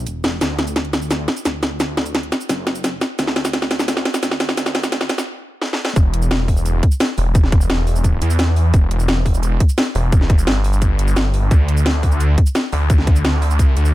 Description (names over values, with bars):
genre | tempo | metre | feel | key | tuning
dark technical drum and bass | 173 BPM | 4/4 | straight | E minor | A4 = 440 Hz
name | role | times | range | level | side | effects
snarling distorted saw bass | bass | 0.0-13.9 s | E1 to E2 | -18 LUFS | equal | distortion, tube saturation, sidechain pumping
drum and bass drum kit | drums | 0.1-13.9 s | cabasa, hi-hat, snare drum | -20 LUFS | equal | overdrive
electronic kick drum | drums | 6.0-13.7 s | none | -14 LUFS | equal | overdrive
room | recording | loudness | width
little or no reverb | high-pass filter | -15 LUFS | side -16 dB against mid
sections
0.0-6.0 A section; 6.0-13.9 B section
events
build-up 0.0-6.0; drum fill 0.0-5.3, 5.6-6.0; filter sweep 0.0-6.0; stop 5.3-6.0; drop 6.0-13.9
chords
none